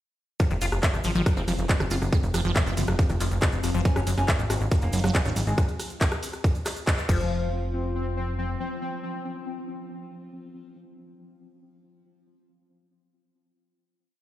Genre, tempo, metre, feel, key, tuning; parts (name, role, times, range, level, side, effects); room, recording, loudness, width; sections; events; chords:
psychedelic trance; 139 BPM; 4/4; straight; F phrygian; A4 = 440 Hz
pulsing gated texture; sustained chords; 0.6-10.8 s; F3 to C4; -36 LUFS; left 2 dB; chorus, built-in reverb, sidechain pumping
liquid acid bass; riff; 0.4-7.5 s; Eb3 to Gb4; -31 LUFS; moving between left 6 dB and right 4 dB; phaser, auto-pan, sidechain pumping, digital delay
electronic kick drum; drums; 0.4-7.2 s; -22 LUFS; equal; overdrive
techno drum kit; drums; 0.4-7.2 s; crash cymbal, handclaps, hi-hat, rim click; -30 LUFS; equal
cabasa; percussion; 0.4-7.3 s; -42 LUFS; right 4 dB
plucky analog bass; bass; 0.5-8.6 s; F1 to Ab1; -27 LUFS; equal
oud; melody; 3.9-10.8 s; F3 to Db4; -36 LUFS; left 2 dB; phaser, sidechain pumping, dub echo
formant-sweep wobble bass; second line; 4.5-5.3 s; C4 to Eb4; -44 LUFS; left 3 dB
light reverb, digital ambience; played on a big sound system in a bare room, stone room reverb; -23 LUFS; side -14 dB against mid
0.4-7.3 drop; 7.3-10.8 final hit
drop 0.4-7.3; band accent 6.9
0.4 F5; 3.9 Gb5; 7.1 F5